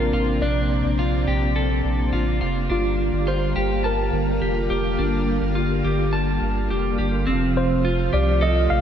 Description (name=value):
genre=dream pop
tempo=105 BPM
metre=4/4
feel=straight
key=unclear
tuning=A4 = 440 Hz
part: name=tine electric piano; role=melody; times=0.0-8.8 s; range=F4 to F5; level=-28 LUFS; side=equal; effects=overdrive, fast stereo tremolo, analog delay
part: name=ensemble organ-string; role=sustained chords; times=0.0-8.8 s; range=C3 to F4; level=-24 LUFS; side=equal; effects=ensemble chorus
part: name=clean electric guitar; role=arpeggios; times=0.0-8.8 s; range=C4 to A5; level=-26 LUFS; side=equal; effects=wide subtle chorus, analog delay
part: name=round analog bass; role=bass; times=0.0-8.8 s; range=F1 to C2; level=-24 LUFS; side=equal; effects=none
part: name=large celesta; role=texture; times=7.5-8.8 s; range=F5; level=-38 LUFS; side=right 3 dB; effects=analog delay
room=moderate lush hall reverb, RT60 2.5 s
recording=dreamy mix soaked in reverb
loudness=-19 LUFS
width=side -9 dB against mid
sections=0.0-7.3 A section; 7.3-8.8 B section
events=none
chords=0.0 Bbmaj9; 2.7 Gm7; 7.3 F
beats=| 0.42 0.99 1.56 2.13 | 2.70 3.27 3.84 4.42 | 4.99 5.56 6.13 6.70 | 7.27 7.84 8.42